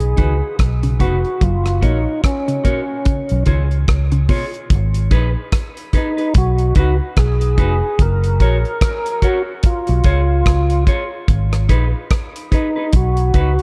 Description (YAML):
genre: roots reggae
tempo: 73 BPM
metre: 4/4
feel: swing 58% on 16ths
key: G# dorian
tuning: A4 = 441 Hz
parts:
  - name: tonewheel organ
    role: melody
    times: 0.0-13.6 s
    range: C#4 to A#4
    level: -24 LUFS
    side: equal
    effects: overdrive, chorus vibrato, slow rotary speaker, dub echo
  - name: vintage muted fingered electric bass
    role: bass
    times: 0.0-13.6 s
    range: E#1 to C#2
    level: -19 LUFS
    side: equal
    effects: none
  - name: damped 70s drum kit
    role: drums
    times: 0.0-13.6 s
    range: hi-hat, kick drum, rim click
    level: -18 LUFS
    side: equal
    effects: none
  - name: mellow electric guitar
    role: accompaniment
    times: 0.2-13.5 s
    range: D#4 to C#5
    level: -28 LUFS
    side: equal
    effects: spring reverb, dub echo
  - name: semi-hollow electric guitar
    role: arpeggios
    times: 0.2-4.4 s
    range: A#2 to F#3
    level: -28 LUFS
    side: equal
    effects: none
room: light reverb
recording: dark, warm production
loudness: -17 LUFS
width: mono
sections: 0.0-4.7 A section; 4.7-13.6 B section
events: none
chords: 0.0 B; 1.4 F#; 3.1 C#; 4.7 G#m; 6.3 B; 8.0 F#; 9.6 C#; 11.3 G#m; 12.9 B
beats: 0.59 | 1.42 2.24 3.06 3.88 | 4.70 5.53 6.35 7.17 | 7.99 8.81 9.64 10.46 | 11.28 12.10 12.93